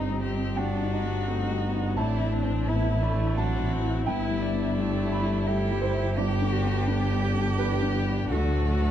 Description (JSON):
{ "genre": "neoclassical piano and strings", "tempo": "85 BPM", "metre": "3/4", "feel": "rubato", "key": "G major", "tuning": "A4 = 438 Hz", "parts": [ { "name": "rich violin", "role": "melody", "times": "0.0-8.9 s", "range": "D4 to G4", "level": "-33 LUFS", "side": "left 6 dB", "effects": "none" }, { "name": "rich cello", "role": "second line", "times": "0.0-8.9 s", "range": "C4 to G4", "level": "-34 LUFS", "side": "right 6 dB", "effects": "none" }, { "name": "dark grand piano", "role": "accompaniment", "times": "0.0-8.9 s", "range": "D2 to B5", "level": "-30 LUFS", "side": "left 1 dB", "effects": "none" }, { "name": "rich viola", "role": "accompaniment", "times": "0.0-8.9 s", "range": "G3 to D4", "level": "-35 LUFS", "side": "right 3 dB", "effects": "none" }, { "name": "rich chamber string section", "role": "sustained chords", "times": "0.0-8.9 s", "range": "F#3 to A4", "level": "-39 LUFS", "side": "left 1 dB", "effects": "none" }, { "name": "rich double bass", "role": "bass", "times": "0.0-8.9 s", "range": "G1 to D2", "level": "-27 LUFS", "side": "equal", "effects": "none" } ], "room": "light reverb", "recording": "dark, warm production", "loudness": "-24 LUFS", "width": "side -10 dB against mid", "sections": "0.0-8.9 A section", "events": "none", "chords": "0.0 Cm/G; 2.0 Am; 4.1 Em/G; 6.2 G; 8.3 D" }